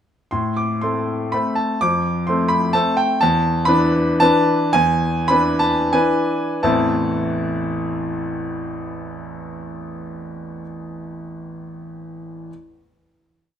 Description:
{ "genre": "classical, piano waltz", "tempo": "80-136 BPM", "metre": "3/4", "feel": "rubato", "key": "A minor", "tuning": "A4 = 439 Hz", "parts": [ { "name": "clear grand piano", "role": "solo", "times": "0.3-12.5 s", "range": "A1 to D6", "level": "-18 LUFS", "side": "equal", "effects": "none" } ], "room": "moderate recital hall reverb, RT60 1.5 s", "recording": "close, detailed microphones", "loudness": "-16 LUFS", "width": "side -9 dB against mid", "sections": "0.3-6.6 A section; 6.6-10.4 final chord", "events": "slowing down 2.5-6.6", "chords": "0.3 Am; 1.8 F; 3.2 E7sus4; 6.6 Am", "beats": "| 0.33 0.83 1.32 | 1.80 2.28 2.75 | 3.22 3.68 4.21 | 4.74 5.30 5.93 | 6.63 7.24 7.88 | 8.51 9.15 9.82" }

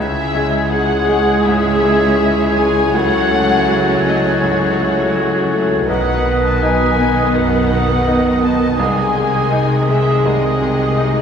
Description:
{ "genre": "cinematic, emotional film score for orchestra", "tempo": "82 BPM", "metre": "4/4", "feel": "rubato", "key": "C# minor", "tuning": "A4 = 441 Hz", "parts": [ { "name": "muted studio violin section", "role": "melody", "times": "0.0-11.2 s", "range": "C#5 to A5", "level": "-22 LUFS", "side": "left 4 dB", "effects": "none" }, { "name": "clear clarinet", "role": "second line", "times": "0.0-11.2 s", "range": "G#4 to B4", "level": "-21 LUFS", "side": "equal", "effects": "none" }, { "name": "mellow large flute ensemble", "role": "second line", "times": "0.0-11.2 s", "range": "D#6 to G#6", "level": "-23 LUFS", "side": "right 3 dB", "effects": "none" }, { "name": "muted studio violin section", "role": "second line", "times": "0.0-11.2 s", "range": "D#4 to D#5", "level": "-25 LUFS", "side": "left 2 dB", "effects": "none" }, { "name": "bright grand piano", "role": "accompaniment", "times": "0.0-11.2 s", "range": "B1 to G#4", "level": "-21 LUFS", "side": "left 1 dB", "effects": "none" }, { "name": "muted studio viola section", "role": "accompaniment", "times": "0.0-11.2 s", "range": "D#3 to G#4", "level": "-21 LUFS", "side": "right 2 dB", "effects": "none" }, { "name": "mellow French horn section", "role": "sustained chords", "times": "0.0-11.2 s", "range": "D#3 to E4", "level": "-23 LUFS", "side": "left 2 dB", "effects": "none" }, { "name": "muted studio cello section", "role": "bass", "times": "0.0-11.2 s", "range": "C#2 to B#2", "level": "-22 LUFS", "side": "equal", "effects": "none" }, { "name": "muted studio double bass section", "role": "bass", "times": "0.0-11.2 s", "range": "B1 to C#2", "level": "-22 LUFS", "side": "right 2 dB", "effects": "none" } ], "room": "wet recital hall reverb, RT60 1.7 s", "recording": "recorded in a church or concert hall", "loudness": "-12 LUFS", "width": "side -7 dB against mid", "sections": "0.0-11.2 A section", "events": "none", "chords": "0.0 C#m; 2.9 F#madd9/C#; 5.9 B; 8.8 G#/B#", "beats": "0.72 1.46 2.19 | 2.94 3.67 4.41 5.14 | 5.88 6.61 7.34 8.07 | 8.79 9.52 10.25 10.97" }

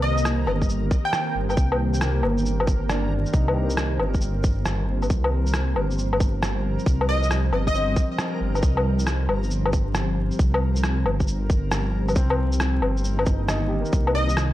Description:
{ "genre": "future garage", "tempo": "136 BPM", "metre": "4/4", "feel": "swing 66% on 16ths", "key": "C minor", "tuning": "A4 = 441 Hz", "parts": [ { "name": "plucky unison lead", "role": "melody", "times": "0.0-1.3, 7.1-8.0, 14.1-14.4 s", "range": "Eb5 to G5", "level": "-28 LUFS", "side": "equal", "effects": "lush chorus, tape echo" }, { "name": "warm upright piano", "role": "accompaniment", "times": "0.0-14.5 s", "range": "Bb3 to Bb4", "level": "-34 LUFS", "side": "left 2 dB", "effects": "sidechain pumping, tape echo" }, { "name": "ethereal airy pad", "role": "sustained chords", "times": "0.0-14.5 s", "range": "Eb3 to C5", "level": "-30 LUFS", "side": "right 1 dB", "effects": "ensemble chorus, built-in reverb, sidechain pumping" }, { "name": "dark detuned saw bass", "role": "bass", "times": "0.0-14.5 s", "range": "G1 to C2", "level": "-24 LUFS", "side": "equal", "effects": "sidechain pumping" }, { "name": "backwards swelling texture", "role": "texture", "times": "0.0-14.5 s", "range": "Eb4 to Bb4", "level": "-38 LUFS", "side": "right 3 dB", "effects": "built-in reverb" }, { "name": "electronic shaker, rim click and woodblock", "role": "drums", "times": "0.2-14.5 s", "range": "none", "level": "-27 LUFS", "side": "left 1 dB", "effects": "vintage 12-bit sampler grit" }, { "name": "electronic kick drum", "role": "drums", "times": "0.6-14.0 s", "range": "none", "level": "-21 LUFS", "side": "equal", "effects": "overdrive, vintage 12-bit sampler grit" } ], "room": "little or no reverb", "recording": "dry, gritty hardware recording, transformer saturation, vinyl crackle", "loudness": "-20 LUFS", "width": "side -14 dB against mid", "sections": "0.0-14.5 A section", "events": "none", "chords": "0.0 Cm7; 5.1 Fsus2; 12.2 Cm7", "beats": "0.25 0.69 1.13 | 1.57 2.01 2.46 2.90 | 3.34 3.78 4.22 4.66 | 5.10 5.54 5.98 6.42 | 6.87 7.31 7.75 8.19 | 8.63 9.07 9.51 9.96 | 10.40 10.84 11.28 11.72 | 12.16 12.60 13.04 13.48 | 13.93 14.37" }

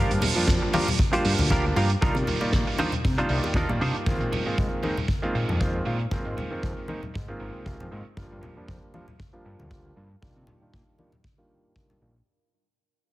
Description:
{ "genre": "nu-disco, nu disco", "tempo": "117 BPM", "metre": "4/4", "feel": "swing 54% on 16ths", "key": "unclear", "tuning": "A4 = 440 Hz", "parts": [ { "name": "clear electric grand piano", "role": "accompaniment", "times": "0.0-12.1 s", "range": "Eb3 to D5", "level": "-30 LUFS", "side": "right 1 dB", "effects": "vintage 12-bit sampler grit, low-pass filter, tape echo" }, { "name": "clean electric guitar", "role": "riff", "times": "0.0-4.0 s", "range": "D4 to C5", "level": "-30 LUFS", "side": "right 1 dB", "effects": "analog chorus, tape echo" }, { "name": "fat analog bass", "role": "bass", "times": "0.0-12.2 s", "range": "G1 to C3", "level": "-28 LUFS", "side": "equal", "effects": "none" }, { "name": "soft-mallet drum kit", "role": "drums", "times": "0.1-12.2 s", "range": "hi-hat, snare drum", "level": "-32 LUFS", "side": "right 3 dB", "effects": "low-pass filter on hats, low-pass filter on snare, low-pass filter on room" }, { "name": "congas and bongos", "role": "percussion", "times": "0.2-12.0 s", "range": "none", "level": "-32 LUFS", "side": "left 2 dB", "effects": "none" }, { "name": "kick drum", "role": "drums", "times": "0.5-11.9 s", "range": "none", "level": "-28 LUFS", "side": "equal", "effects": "none" } ], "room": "light reverb, small room ambience", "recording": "heavily compressed radio sound, multiband compression", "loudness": "-23 LUFS", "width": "side -16 dB against mid", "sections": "0.0-12.3 A section", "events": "fade-out 0.0-12.3; filter sweep on electric grand piano 0.0-12.3", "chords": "0.0 Gm7; 2.0 Cm11; 4.1 Bb7sus4; 6.1 Ab69; 8.2 Gm7; 10.2 Cm11", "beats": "0.48 0.99 1.50 | 2.02 2.53 3.04 3.55 | 4.07 4.58 5.09 5.60 | 6.12 6.63 7.14 7.66 | 8.17 8.68 9.19 9.71 | 10.22 10.73 11.24 11.76" }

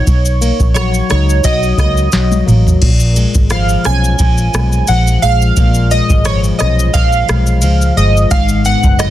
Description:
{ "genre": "indie pop, bedroom pop", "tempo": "87 BPM", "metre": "4/4", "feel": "swing 55% on 16ths", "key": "unclear", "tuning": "A4 = 440 Hz", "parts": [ { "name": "chorused retro synth keys", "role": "melody", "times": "0.0-9.1 s", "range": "C#5 to G#5", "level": "-17 LUFS", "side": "right 2 dB", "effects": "wide subtle chorus, digital delay" }, { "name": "flamenco guitar", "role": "accompaniment", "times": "0.0-9.1 s", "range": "G#2 to Ab4", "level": "-18 LUFS", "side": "left 4 dB", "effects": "wide subtle chorus, vibrato effect" }, { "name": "vintage muted fingered electric bass", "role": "bass", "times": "0.1-9.1 s", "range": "F#1 to C#2", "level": "-13 LUFS", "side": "equal", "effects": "none" }, { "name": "soft vintage rhythm box", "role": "drums", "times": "0.1-9.1 s", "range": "crash cymbal, kick drum, ride cymbal, rim click, shaker, snare drum, toms", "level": "-15 LUFS", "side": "equal", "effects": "soft clipping on snare" } ], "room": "little or no reverb", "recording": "dense, heavily limited modern master", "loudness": "-9 LUFS", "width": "side -13 dB against mid", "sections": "0.0-9.1 A section", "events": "drum fill 2.1-2.8", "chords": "0.1 Bmaj7; 2.8 A#m7; 8.3 G#m7", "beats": "| 0.07 0.76 1.45 2.13 | 2.82 3.51 4.19 4.88 | 5.57 6.25 6.94 7.63 | 8.31 9.00" }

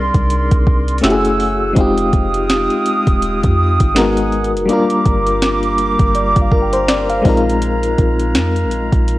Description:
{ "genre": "contemporary R&B", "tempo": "82 BPM", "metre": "4/4", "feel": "swing 58% on 16ths", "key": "F dorian", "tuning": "A4 = 439 Hz", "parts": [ { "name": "FM electric piano with tremolo", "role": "accompaniment", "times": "0.0-9.2 s", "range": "G3 to F5", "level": "-17 LUFS", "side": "left 2 dB", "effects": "none" }, { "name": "clear woodwind section", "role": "sustained chords", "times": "0.0-9.2 s", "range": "Ab3 to Fb6", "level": "-20 LUFS", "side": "right 3 dB", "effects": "sidechain pumping" }, { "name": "soft 808-style bass", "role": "bass", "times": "0.0-9.2 s", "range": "Eb1 to F2", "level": "-19 LUFS", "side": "equal", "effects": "none" }, { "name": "smooth R&B drum kit", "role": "drums", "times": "0.1-9.2 s", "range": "hi-hat, kick drum, snare drum", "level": "-16 LUFS", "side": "equal", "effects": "overdrive" }, { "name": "small celesta", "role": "texture", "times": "6.2-8.0 s", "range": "D5 to G5", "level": "-27 LUFS", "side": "right 4 dB", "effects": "stereo widening, digital delay" } ], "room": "light reverb, digital ambience", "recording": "worn, warbling old tape, cassette tape, warbly pitch drift", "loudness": "-12 LUFS", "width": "side -17 dB against mid", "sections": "0.0-9.2 A section", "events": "none", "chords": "0.0 Cm9; 1.0 Gbm9; 1.8 Fm9; 4.0 Abm7; 4.7 Gm7; 7.2 Bb7sus4", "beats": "0.30 1.03 | 1.76 2.49 3.23 3.96 | 4.69 5.42 6.15 6.88 | 7.62 8.35 9.08" }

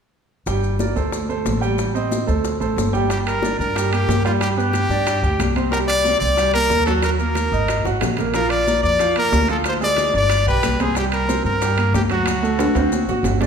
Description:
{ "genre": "latin, salsa", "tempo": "183 BPM", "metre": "4/4", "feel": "straight", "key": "G minor", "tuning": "A4 = 440 Hz", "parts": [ { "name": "clear concert grand piano", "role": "accompaniment", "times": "0.5-13.5 s", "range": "F3 to G5", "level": "-23 LUFS", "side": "right 5 dB", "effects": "none" }, { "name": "upright bass", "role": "bass", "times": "0.5-13.5 s", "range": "G1 to G2", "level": "-22 LUFS", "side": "equal", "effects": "none" }, { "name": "bongos", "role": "percussion", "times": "0.5-13.5 s", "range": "none", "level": "-30 LUFS", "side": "left 5 dB", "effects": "none" }, { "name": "congas", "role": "percussion", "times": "0.5-13.5 s", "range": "none", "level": "-28 LUFS", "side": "left 4 dB", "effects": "none" }, { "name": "maracas", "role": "percussion", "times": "0.5-13.5 s", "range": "none", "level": "-36 LUFS", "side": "left 6 dB", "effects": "none" }, { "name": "brilliant trumpet", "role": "melody", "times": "3.1-13.2 s", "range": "F4 to D5", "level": "-20 LUFS", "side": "left 1 dB", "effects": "none" }, { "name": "timbales", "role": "percussion", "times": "3.1-13.5 s", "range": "none", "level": "-28 LUFS", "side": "right 3 dB", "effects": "none" } ], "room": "wet recital hall reverb, RT60 1.6 s", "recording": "recorded in a church or concert hall", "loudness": "-17 LUFS", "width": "side -7 dB against mid", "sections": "0.5-3.1 A section; 3.1-13.5 B section", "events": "drum fill 7.9-8.3, 12.6-13.5", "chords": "0.5 Gm; 1.1 D5; 1.8 Am7b5; 2.4 D5; 3.1 Gm; 4.4 G; 5.7 Cm9; 7.0 Absus2; 8.3 Bb; 9.7 Ddim; 10.3 G; 11.0 C5; 12.3 D7", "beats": "| 0.47 0.80 1.13 1.46 | 1.79 2.12 2.44 2.77 | 3.10 3.43 3.76 4.09 | 4.41 4.74 5.07 5.40 | 5.72 6.05 6.38 6.71 | 7.03 7.36 7.69 8.01 | 8.34 8.67 8.99 9.32 | 9.65 9.98 10.30 10.63 | 10.96 11.29 11.61 11.94 | 12.27 12.59 12.92 13.25" }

